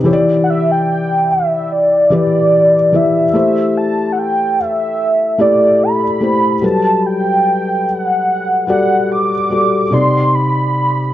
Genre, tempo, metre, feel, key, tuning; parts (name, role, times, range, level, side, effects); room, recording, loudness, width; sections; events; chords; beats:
R&B; 73 BPM; 4/4; swing 54% on 16ths; G major; A4 = 440 Hz
felt-muted upright piano; accompaniment; 0.0-11.1 s; C3 to D5; -15 LUFS; left 2 dB
warm velvety synth lead; melody; 0.4-11.1 s; D5 to D6; -14 LUFS; right 1 dB; chorus, digital delay
moderate recital hall reverb, RT60 1.4 s; worn, warbling old tape, cassette tape, warbly pitch drift; -11 LUFS; side -13 dB against mid
0.0-11.1 A section
0.1 Em7; 3.3 Am7; 6.6 Gmaj9; 9.9 Cmadd9
| 0.06 0.88 1.70 2.52 | 3.34 4.17 4.99 5.81 | 6.63 7.45 8.28 9.10 | 9.92 10.74